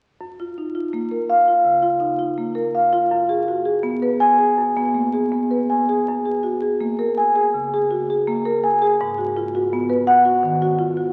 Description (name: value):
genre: classical, contemporary piece for solo marimba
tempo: 83 BPM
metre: 4/4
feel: straight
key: F# major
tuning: A4 = 440 Hz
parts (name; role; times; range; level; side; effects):
- marimba with medium mallets; solo; 0.2-11.1 s; F#2 to G#5; -20 LUFS; equal; none
room: wet church reverb, RT60 3.5 s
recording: very old 78 rpm record, vinyl crackle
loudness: -19 LUFS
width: mono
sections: 0.2-6.1 A section; 6.1-11.1 B section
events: none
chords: 0.2 F#maj7; 3.1 G#m7/F#; 6.1 F#add9; 9.0 G#m7